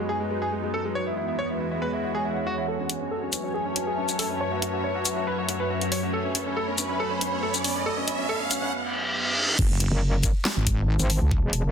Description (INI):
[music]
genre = heavy wobble dubstep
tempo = 139 BPM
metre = 4/4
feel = half-time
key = F# minor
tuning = A4 = 440 Hz
[part]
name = bright concert grand piano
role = melody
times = 0.0-8.7 s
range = G#3 to C#5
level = -30 LUFS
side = equal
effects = low-pass filter, tape echo
[part]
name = evolving wavetable pad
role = sustained chords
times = 0.0-9.6 s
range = E2 to C#5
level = -31 LUFS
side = left 1 dB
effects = ensemble chorus, built-in reverb, sidechain pumping
[part]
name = airy breathy pad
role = texture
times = 0.0-11.7 s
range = E3 to B5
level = -32 LUFS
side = equal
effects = chorus, sidechain pumping
[part]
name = riser and reverse cymbal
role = sound effects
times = 5.0-9.6 s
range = none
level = -29 LUFS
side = right 2 dB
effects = none
[part]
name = dubstep drum kit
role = drums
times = 2.9-11.6 s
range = crash cymbal, handclaps, hi-hat, shaker, snare drum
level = -27 LUFS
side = left 1 dB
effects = none
[part]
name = wobble bass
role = bass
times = 9.6-11.4 s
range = F#1 to C#2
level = -23 LUFS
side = equal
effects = chorus, overdrive
[part]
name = electronic kick drum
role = drums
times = 9.6-11.4 s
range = none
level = -24 LUFS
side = equal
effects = none
[part]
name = metallic wobble bass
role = bass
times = 9.9-11.7 s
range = E1 to G#1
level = -23 LUFS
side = equal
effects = chorus, overdrive
[sound]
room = light reverb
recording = dense, heavily limited modern master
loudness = -23 LUFS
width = side -8 dB against mid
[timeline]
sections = 0.0-2.7 A section; 2.7-9.6 B section; 9.6-11.7 C section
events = build-up 2.7-9.6; filter sweep on grand piano 2.7-9.6; riser 5.0-8.7; reverse cymbal 8.7-9.6; drop 9.6-11.7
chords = 0.0 G#m/F#; 1.0 Eadd9; 2.7 F#m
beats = 0.09 0.52 | 0.95 1.39 1.82 2.25 | 2.68 3.11 3.54 3.98 | 4.41 4.84 5.27 5.70 | 6.13 6.57 7.00 7.43 | 7.86 8.29 8.72 9.15 | 9.59 10.02 10.45 10.88 | 11.31